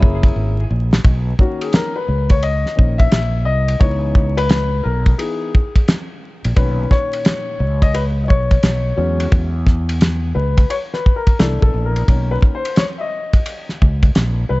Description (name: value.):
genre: hip hop, jazz-hop.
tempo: 87 BPM.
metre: 4/4.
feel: swing 65% on 16ths.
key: B major.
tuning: A4 = 442 Hz.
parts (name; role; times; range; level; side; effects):
archtop guitar, miked and amplified; melody; 0.0-0.7 s; G#4; -38 LUFS; left 2 dB; tape echo.
semi-hollow electric guitar; second line; 0.0-0.7 s; E4; -31 LUFS; right 1 dB; none.
dark grand piano; accompaniment; 0.0-14.6 s; A#2 to E5; -22 LUFS; left 4 dB; none.
fretless electric bass; bass; 0.0-14.6 s; F#1 to E2; -18 LUFS; equal; wide subtle chorus.
cloth-damped thuddy drum kit; drums; 0.0-14.4 s; hi-hat, kick drum, ride cymbal, snare drum; -14 LUFS; equal; none.
room: small room ambience.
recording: dark, warm production, vinyl crackle, nothing above 7.9 kHz.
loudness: -14 LUFS.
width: side -21 dB against mid.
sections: 0.0-1.1 A section; 1.1-14.6 B section.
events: drum fill 0.4-1.1; grand piano solo 1.1-14.6.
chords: 0.0 F#9; 1.1 Bmaj9; 3.8 C#m9; 6.6 Bmaj9; 9.0 E6; 11.4 Cmaj9; 12.1 Bmaj9.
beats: 0.36 | 1.05 1.74 2.43 3.12 | 3.81 4.50 5.19 5.88 | 6.57 7.26 7.95 8.64 | 9.33 10.02 10.71 11.40 | 12.09 12.78 13.47 14.16.